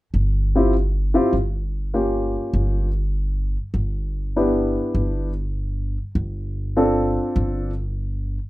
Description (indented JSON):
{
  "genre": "jazz",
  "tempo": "100 BPM",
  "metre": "4/4",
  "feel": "swing 68% on 8ths",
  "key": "unclear",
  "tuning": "A4 = 440 Hz",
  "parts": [
    { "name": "upright bass", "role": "bass", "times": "0.1-8.4 s", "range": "G1", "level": "-23 LUFS", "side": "equal", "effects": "none" },
    { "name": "warm upright piano", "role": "melody", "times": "0.6-7.7 s", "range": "Bb3 to A4", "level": "-20 LUFS", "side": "left 1 dB", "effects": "none" }
  ],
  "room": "light reverb",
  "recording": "rough home demo mix",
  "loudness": "-20 LUFS",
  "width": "side -17 dB against mid",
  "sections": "0.0-8.5 A section",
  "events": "none",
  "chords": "none"
}